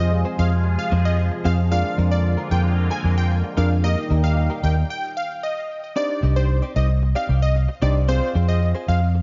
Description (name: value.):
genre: pop.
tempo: 113 BPM.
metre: 4/4.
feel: straight.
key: C minor.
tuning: A4 = 439 Hz.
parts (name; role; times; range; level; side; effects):
plucky unison lead; melody; 0.0-9.0 s; C5 to Ab5; -29 LUFS; equal; delay.
soft electric-piano-like synth keys; accompaniment; 0.0-8.7 s; Bb3 to F5; -32 LUFS; equal; chorus.
sweeping resonant pad; sustained chords; 0.0-4.9 s; Bb2 to Ab4; -31 LUFS; equal; chorus.
direct-recorded clean electric guitar; riff; 0.0-9.2 s; Ab3 to D5; -35 LUFS; equal; lush chorus.
vintage muted fingered electric bass; bass; 0.0-9.2 s; C2 to F2; -20 LUFS; equal; none.
room: light reverb, digital ambience.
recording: vinyl crackle, nothing above 7.5 kHz.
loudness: -21 LUFS.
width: mono.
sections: 0.0-6.0 A section; 6.0-9.2 A section.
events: drop 0.0-6.0, 6.0-9.2; stop 4.9-6.0.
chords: 0.0 Fm; 1.7 Bb7/F; 3.8 Eb; 6.0 Cmadd9; 8.1 Fm.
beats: 0.12 0.65 1.18 | 1.72 2.25 2.78 3.31 | 3.84 4.37 4.90 5.43 | 5.96 6.49 7.03 7.56 | 8.09 8.62 9.15.